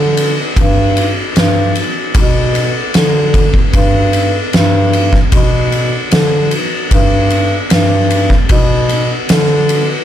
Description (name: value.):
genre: stoner and doom metal.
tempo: 76 BPM.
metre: 4/4.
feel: straight.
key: unclear.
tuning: A4 = 440 Hz.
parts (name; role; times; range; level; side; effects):
mellow bass clarinet; bass; 0.0-9.9 s; G2 to D3; -13 LUFS; equal; tube saturation.
oversized low-tuned drum kit; drums; 0.2-9.9 s; kick drum, ride cymbal, snare drum; -12 LUFS; equal; none.
room: little or no reverb.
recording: dark, warm production.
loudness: -10 LUFS.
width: side -11 dB against mid.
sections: 0.0-10.0 A section.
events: none.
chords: none.